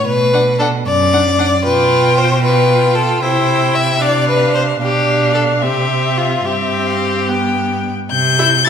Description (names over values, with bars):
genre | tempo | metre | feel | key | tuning
quick classical-period movement for string quartet | 75 BPM (dotted quarters) | 6/8 | straight | C major | A4 = 441 Hz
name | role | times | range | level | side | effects
clear violin | second line | 0.0-8.7 s | F4 to E5 | -16 LUFS | left 4 dB | none
rich cello | bass | 0.1-8.7 s | F#2 to C3 | -18 LUFS | right 4 dB | none
rich violin | melody | 0.3-8.7 s | E5 to A6 | -19 LUFS | left 7 dB | none
rich viola | accompaniment | 0.3-8.7 s | B3 to F4 | -19 LUFS | right 3 dB | none
room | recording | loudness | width
wet recital hall reverb, RT60 1.5 s | minimal, uncompressed stereo recording | -12 LUFS | side -8 dB against mid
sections
0.0-8.1 A section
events
none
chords
0.1 Bm; 1.6 G7/B; 3.2 C; 4.0 Dm7/C; 4.8 G7/B; 5.6 C; 6.5 C/G; 7.3 G; 8.1 C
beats
| 0.06 0.86 | 1.65 2.44 | 3.22 4.02 | 4.82 5.62 | 6.45 7.29 | 8.12